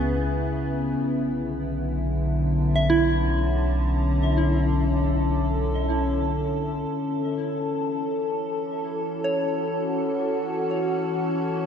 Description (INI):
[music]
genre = ambient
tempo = free time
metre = none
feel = none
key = F# minor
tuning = A4 = 441 Hz
[part]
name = evolving wavetable pad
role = sustained chords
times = 0.0-11.7 s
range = C#3 to A4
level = -24 LUFS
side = left 1 dB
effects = chorus, built-in reverb
[part]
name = warm sub bass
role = bass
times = 0.0-6.9 s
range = B1 to C#2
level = -26 LUFS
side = equal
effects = none
[part]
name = soft synth bell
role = arpeggios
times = 2.8-11.7 s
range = E4 to E5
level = -28 LUFS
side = right 1 dB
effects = chorus, phaser, ping-pong delay
[sound]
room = wet lush hall reverb, RT60 2.6 s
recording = none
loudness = -22 LUFS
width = side -7 dB against mid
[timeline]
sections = 0.0-6.9 A section; 6.9-11.7 B section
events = none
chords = 0.0 C#m7; 1.0 Bm11; 6.9 F#m7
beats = free time